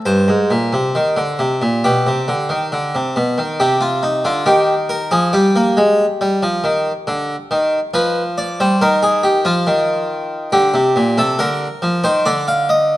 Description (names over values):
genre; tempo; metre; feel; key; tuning
classical, baroque-style two-part invention for harpsichord; 69 BPM; 4/4; straight; C minor; A4 = 438 Hz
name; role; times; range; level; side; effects
harpsichord; solo; 0.1-13.0 s; G2 to F5; -14 LUFS; equal; none
room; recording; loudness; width
moderate recital hall reverb, RT60 1.6 s; close, detailed microphones; -14 LUFS; side -16 dB against mid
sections
0.0-3.6 A section; 3.6-13.0 B section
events
none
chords
0.0 N.C.; 1.8 G/B; 3.6 Cm; 5.3 Eb/G; 7.1 G7/D; 8.8 Ebadd9; 10.5 Gm; 12.2 Bb/D (rootless)